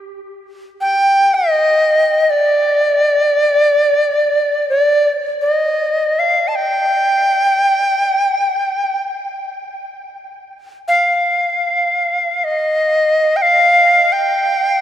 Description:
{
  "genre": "world meditative, free-time meditation music",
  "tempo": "free time",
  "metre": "none",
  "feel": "none",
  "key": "unclear",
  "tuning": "A4 = 440 Hz",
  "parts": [
    { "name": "bright reedy Native American-style cedar flute", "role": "solo", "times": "0.8-14.8 s", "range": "D5 to A5", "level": "-13 LUFS", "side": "equal", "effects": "tape echo" }
  ],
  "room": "wet huge ambient reverb, RT60 6.7 s",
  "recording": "none",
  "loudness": "-12 LUFS",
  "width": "side -10 dB against mid",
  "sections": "0.1-14.8 A section",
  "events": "none",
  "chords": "none"
}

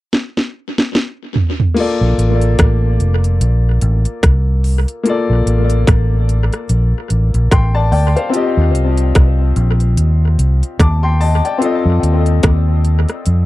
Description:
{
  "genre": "lovers rock reggae",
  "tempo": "73 BPM",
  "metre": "4/4",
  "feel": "swing 58% on 16ths",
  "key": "Bb major",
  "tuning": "A4 = 440 Hz",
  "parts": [
    { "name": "drum and bass drum kit", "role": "drums", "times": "0.1-13.5 s", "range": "crash cymbal, hi-hat, kick drum, rim click, snare drum, toms", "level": "-16 LUFS", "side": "equal", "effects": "tape echo" },
    { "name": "warm grand piano", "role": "accompaniment", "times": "1.7-13.5 s", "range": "Bb3 to D6", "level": "-19 LUFS", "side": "left 3 dB", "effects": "tape echo" },
    { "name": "fingered electric bass", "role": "bass", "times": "2.0-13.5 s", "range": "F1 to F2", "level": "-12 LUFS", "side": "equal", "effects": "none" }
  ],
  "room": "little or no reverb",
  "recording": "dry, close 1970s-style studio recording",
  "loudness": "-12 LUFS",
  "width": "side -17 dB against mid",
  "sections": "0.0-1.8 A section; 1.8-13.5 B section",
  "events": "drum fill 0.1-1.8",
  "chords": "0.0 N.C.; 1.8 Bbmaj7; 8.3 Eb69; 11.6 F7"
}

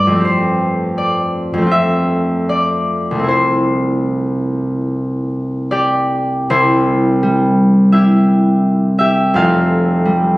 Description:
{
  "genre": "classical, solo harp piece",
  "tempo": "72-86 BPM",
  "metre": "4/4",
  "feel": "rubato",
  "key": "C major",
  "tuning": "A4 = 442 Hz",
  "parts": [
    { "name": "concert harp", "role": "solo", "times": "0.0-10.4 s", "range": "F1 to F5", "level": "-12 LUFS", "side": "equal", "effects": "none" }
  ],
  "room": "moderate stone room reverb, RT60 1.0 s",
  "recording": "recorded on a phone in the room, studio reverb",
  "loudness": "-12 LUFS",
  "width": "side -20 dB against mid",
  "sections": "0.0-6.5 A section; 6.5-10.4 B section",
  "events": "none",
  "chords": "0.2 Fadd9; 1.7 Fmaj7; 3.3 C6; 6.5 Cadd9; 9.4 Fmaj9"
}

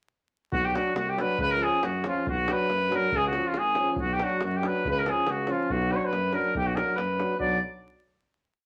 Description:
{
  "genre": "balkan folk, Balkan brass band",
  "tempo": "139 BPM",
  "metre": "2/4",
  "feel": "swing 53% on 16ths",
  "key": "B hungarian minor",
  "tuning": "A4 = 440 Hz",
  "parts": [
    { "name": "bright trumpet", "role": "melody", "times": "0.5-7.6 s", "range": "E#4 to D5", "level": "-29 LUFS", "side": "equal", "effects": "none" },
    { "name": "warm tuba", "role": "bass", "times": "0.5-7.6 s", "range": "G#1 to F#2", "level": "-34 LUFS", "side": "equal", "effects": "none" },
    { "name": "davul", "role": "percussion", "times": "0.5-7.6 s", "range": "none", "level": "-38 LUFS", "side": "equal", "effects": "none" },
    { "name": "mellow French horn", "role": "accompaniment", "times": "0.7-7.6 s", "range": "C#4 to D4", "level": "-39 LUFS", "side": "equal", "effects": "none" },
    { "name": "warm euphonium", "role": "accompaniment", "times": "0.7-7.6 s", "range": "E#3 to F#3", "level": "-36 LUFS", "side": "equal", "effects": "none" }
  ],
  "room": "wet studio reverb, RT60 0.7 s",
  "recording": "vinyl crackle",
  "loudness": "-27 LUFS",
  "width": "mono",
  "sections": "0.5-7.4 A section; 7.4-8.2 final chord",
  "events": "none",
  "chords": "0.5 Bm; 1.4 C#; 2.3 Bm; 3.1 C#; 4.0 Bm; 4.8 C#; 5.7 Bm"
}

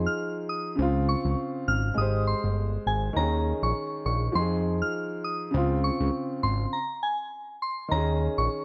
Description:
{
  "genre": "dancehall",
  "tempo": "101 BPM",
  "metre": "4/4",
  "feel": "swing 56% on 16ths",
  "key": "unclear",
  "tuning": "A4 = 441 Hz",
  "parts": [
    { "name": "warm baby grand piano", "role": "accompaniment", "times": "0.0-8.6 s", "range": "Db3 to C5", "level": "-32 LUFS", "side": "equal", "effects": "none" },
    { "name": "fat analog bass", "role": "bass", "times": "0.0-8.5 s", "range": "G1 to F2", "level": "-29 LUFS", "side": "equal", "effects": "none" },
    { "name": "soft synth bell", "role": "melody", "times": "0.1-8.5 s", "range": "Ab5 to F6", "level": "-33 LUFS", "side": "equal", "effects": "chorus, digital delay" }
  ],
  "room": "light reverb",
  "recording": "none",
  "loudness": "-27 LUFS",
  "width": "mono",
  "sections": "0.0-7.9 A section",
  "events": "stop 6.7-7.9",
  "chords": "0.0 Fm7; 0.8 Dbmaj7; 2.0 Abmaj7; 3.2 Eb7sus4; 4.4 Fm7; 5.5 Dbmaj7; 6.7 N.C.; 7.9 Eb7sus4"
}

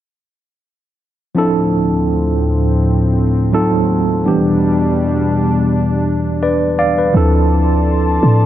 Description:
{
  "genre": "R&B",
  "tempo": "83 BPM",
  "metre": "4/4",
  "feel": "swing 54% on 16ths",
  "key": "D dorian",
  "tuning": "A4 = 441 Hz",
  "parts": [
    { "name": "tine electric piano", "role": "accompaniment", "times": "1.3-8.5 s", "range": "E3 to F5", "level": "-15 LUFS", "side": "right 2 dB", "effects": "medium stereo tremolo" },
    { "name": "warm analog pad", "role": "sustained chords", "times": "1.4-8.5 s", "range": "D2 to C6", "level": "-17 LUFS", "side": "left 2 dB", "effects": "chorus" },
    { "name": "clean 808-style bass", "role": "bass", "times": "7.1-8.5 s", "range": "D2 to A2", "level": "-13 LUFS", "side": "equal", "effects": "none" }
  ],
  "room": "light reverb",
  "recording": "dark, warm production",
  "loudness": "-12 LUFS",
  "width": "side -12 dB against mid",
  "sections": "1.4-7.1 A section; 7.1-8.5 B section",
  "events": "tine electric piano fill 6.1-7.1",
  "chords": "1.4 Dm7; 3.5 D#dim7; 4.3 Em7; 7.1 Dm7"
}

